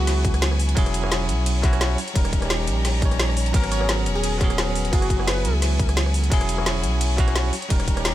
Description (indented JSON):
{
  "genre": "liquid drum and bass",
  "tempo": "173 BPM",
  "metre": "4/4",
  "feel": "swing 54% on 16ths",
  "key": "unclear",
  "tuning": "A4 = 444 Hz",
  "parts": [
    { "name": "plucky unison lead", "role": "melody", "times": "0.0-0.5, 3.7-5.5 s", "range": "F#4 to C#5", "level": "-32 LUFS", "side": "left 1 dB", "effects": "ping-pong delay" },
    { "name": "bell-like tine electric piano", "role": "accompaniment", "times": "0.0-8.1 s", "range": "F#3 to C#5", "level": "-27 LUFS", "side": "equal", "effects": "medium stereo tremolo, ping-pong delay" },
    { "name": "clear studio string section", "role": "sustained chords", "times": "0.0-8.1 s", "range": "B4 to A#5", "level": "-33 LUFS", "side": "left 3 dB", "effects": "none" },
    { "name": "saturated sub bass", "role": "bass", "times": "0.0-8.1 s", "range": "D#1 to C#2", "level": "-23 LUFS", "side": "equal", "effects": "tube saturation" },
    { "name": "drum and bass drum kit", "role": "drums", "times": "0.1-8.1 s", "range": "hi-hat, ride cymbal, rim click, snare drum", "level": "-26 LUFS", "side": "equal", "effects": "none" },
    { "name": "electronic kick drum", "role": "drums", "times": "0.2-8.0 s", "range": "none", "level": "-21 LUFS", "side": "equal", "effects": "none" }
  ],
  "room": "little or no reverb",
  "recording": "none",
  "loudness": "-19 LUFS",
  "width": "side -14 dB against mid",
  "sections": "0.0-8.1 A section",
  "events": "none",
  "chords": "0.0 F#9sus4; 0.8 E69; 2.0 D#7; 3.5 G#m11; 4.9 F#9sus4; 6.3 E69; 7.5 D#7",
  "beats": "0.07 0.42 | 0.77 1.11 1.46 1.81 | 2.15 2.50 2.85 3.19 | 3.54 3.89 4.24 4.58 | 4.93 5.28 5.62 5.97 | 6.32 6.66 7.01 7.36 | 7.70 8.05"
}